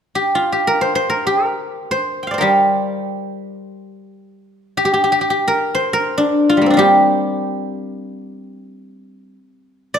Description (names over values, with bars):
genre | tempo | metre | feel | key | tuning
chinese traditional, Chinese solo plucked strings | free time | none | none | G yu mode | A4 = 440 Hz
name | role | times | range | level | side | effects
guzheng | solo | 0.2-10.0 s | G3 to G5 | -15 LUFS | equal | none
room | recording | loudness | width
moderate concert hall reverb, RT60 1.8 s | minimal, uncompressed stereo recording | -14 LUFS | side -8 dB against mid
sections
0.0-10.0 A section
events
none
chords
none